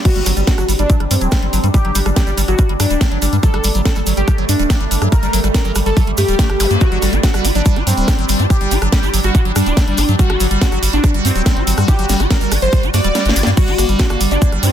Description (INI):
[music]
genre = psychedelic trance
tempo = 142 BPM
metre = 4/4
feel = straight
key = G harmonic minor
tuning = A4 = 440 Hz
[part]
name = bubbling stepped-filter texture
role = sustained chords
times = 0.0-14.7 s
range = G3 to F#4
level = -24 LUFS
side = right 2 dB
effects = chorus, built-in reverb, sidechain pumping
[part]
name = wide unison lead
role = melody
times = 0.1-14.7 s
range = C4 to D5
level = -21 LUFS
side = left 1 dB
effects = phaser, sidechain pumping, tape echo
[part]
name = liquid acid bass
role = riff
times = 0.1-14.7 s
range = F#3 to G4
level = -22 LUFS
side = moving between left 7 dB and right 7 dB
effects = phaser, auto-pan, sidechain pumping, digital delay
[part]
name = electronic kick drum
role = drums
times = 0.1-14.5 s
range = none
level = -14 LUFS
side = equal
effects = none
[part]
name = garage drum kit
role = drums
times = 0.1-14.7 s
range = crash cymbal, hi-hat, rim click, snare drum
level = -22 LUFS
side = equal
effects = none
[part]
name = cabasa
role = percussion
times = 0.1-14.7 s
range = none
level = -26 LUFS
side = right 3 dB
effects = none
[part]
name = round analog bass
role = bass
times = 0.2-14.7 s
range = D1 to G2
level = -17 LUFS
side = equal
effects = none
[part]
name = zap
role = sound effects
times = 6.6-6.7 s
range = none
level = -28 LUFS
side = equal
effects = none
[sound]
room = digital ambience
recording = dense, heavily limited modern master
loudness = -12 LUFS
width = side -10 dB against mid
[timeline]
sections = 0.1-14.7 A section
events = drop 0.1-14.7; kick drops out 13.2-13.6; drum fill 13.2-13.6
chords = 0.1 G5